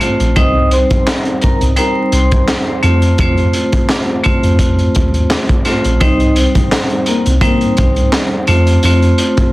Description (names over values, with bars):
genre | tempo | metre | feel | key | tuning
hip hop, boom-bap hip-hop | 85 BPM | 4/4 | swing 54% on 16ths | C dorian | A4 = 440 Hz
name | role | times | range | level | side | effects
vibraphone with hard mallets | accompaniment | 0.0-9.5 s | G3 to C5 | -16 LUFS | equal | cassette tape, high-pass filter, low-pass filter
crunchy breakbeat drum kit | drums | 0.0-9.5 s | handclaps, hi-hat, kick drum, snare drum | -15 LUFS | equal | none
mellow tine electric piano | bass | 0.2-9.1 s | Bb1 to F2 | -14 LUFS | equal | medium stereo tremolo
vibraphone with medium mallets | melody | 0.4-8.1 s | Bb3 to Eb6 | -20 LUFS | left 1 dB | high-pass filter, low-pass filter, tape echo
room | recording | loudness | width
light reverb | dense, heavily limited modern master, vinyl crackle | -10 LUFS | side -18 dB against mid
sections
0.0-6.0 A section; 6.0-9.5 B section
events
none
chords
0.4 Cm; 2.8 F; 6.0 Cm; 8.5 F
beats
| 0.36 1.07 1.77 2.48 | 3.19 3.89 4.60 5.30 | 6.01 6.71 7.42 8.13 | 8.83